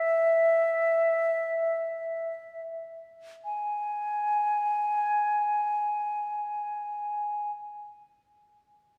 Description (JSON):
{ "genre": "classical, free, expressive piece for unaccompanied flute", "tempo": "free time", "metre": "none", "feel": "none", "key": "unclear", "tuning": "A4 = 440 Hz", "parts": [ { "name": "concert flute", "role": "solo", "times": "0.0-7.5 s", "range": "Fb5 to Ab5", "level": "-28 LUFS", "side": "equal", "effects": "none" } ], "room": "wet church reverb, RT60 3.2 s", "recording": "none", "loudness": "-28 LUFS", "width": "mono", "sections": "0.0-3.5 A section; 3.5-7.6 B section", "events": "slowing down 0.0-3.5", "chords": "none" }